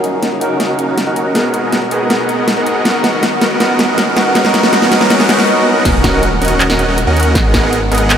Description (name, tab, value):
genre	future bass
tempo	160 BPM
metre	4/4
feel	half-time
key	unclear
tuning	A4 = 440 Hz
part	overdriven tine electric piano	accompaniment	0.0-5.9 s	G#3 to A#4	-17 LUFS	equal	lush chorus, sidechain pumping, diffuse ambient delay
part	muted studio string section	sustained chords	0.0-5.5 s	B2 to A#4	-25 LUFS	equal	sidechain pumping
part	supersaw chords	riff	0.0-8.2 s	B3 to F#5	-15 LUFS	right 1 dB	vintage 12-bit sampler grit, sidechain pumping, low-pass filter, diffuse ambient delay
part	wide detuned saw bass	bass	0.0-8.2 s	D#1 to G#2	-20 LUFS	equal	none
part	big-room dance drum kit	drums	0.0-8.2 s	crash cymbal, handclaps, hi-hat, snare drum	-16 LUFS	equal	none
part	riser and impact	sound effects	0.1-7.4 s	none	-27 LUFS	equal	none
part	electronic kick drum	drums	5.9-7.6 s	none	-16 LUFS	equal	none
room	wet huge ambient reverb, RT60 6.1 s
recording	dreamy mix soaked in reverb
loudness	-10 LUFS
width	side -8 dB against mid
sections	0.0-5.9 A section; 5.9-8.2 B section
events	build-up 0.0-5.9; drum fill 0.0-5.5; filter sweep on supersaw synth 0.0-5.9; drop 5.9-8.2; impact 5.9-7.4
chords	0.0 D#m7; 1.4 G#m9; 2.9 Bmaj7; 4.4 C#m11; 5.9 D#m7; 7.4 G#m9